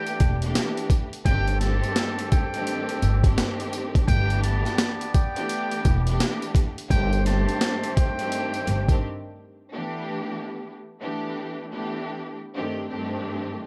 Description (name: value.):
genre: hip hop, boom-bap hip-hop.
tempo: 85 BPM.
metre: 4/4.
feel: swing 63% on 16ths.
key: G major.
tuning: A4 = 441 Hz.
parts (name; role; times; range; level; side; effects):
trumpet with metal mute; melody; 0.0-9.0 s; G5 to A5; -33 LUFS; equal; high-pass filter, low-pass filter, slapback echo.
rich studio string section; accompaniment; 0.0-13.7 s; G2 to G4; -32 LUFS; equal; high-pass filter, low-pass filter.
mellow trumpet section; stabs; 0.0-9.0 s; A3 to D5; -38 LUFS; equal; high-pass filter, low-pass filter, slapback echo, plate reverb.
boom bap sampler-style drum kit; drums; 0.1-9.0 s; hi-hat, kick drum, snare drum; -26 LUFS; equal; none.
upright bass; bass; 0.2-9.0 s; E1 to G1; -26 LUFS; equal; none.
room: light reverb.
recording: dark, warm production.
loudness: -25 LUFS.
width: mono.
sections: 0.0-9.7 A section; 9.7-13.7 B section.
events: break 9.0-9.7.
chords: 0.0 G6; 1.3 Cm6/G; 4.1 G6; 6.9 Cm6/G; 9.7 G6; 12.6 Cm6/G.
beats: 0.55 | 1.26 1.96 2.67 3.37 | 4.08 4.79 5.49 6.20 | 6.90 7.61 8.31 9.02 | 9.73 10.43 11.14 11.84 | 12.55 13.26.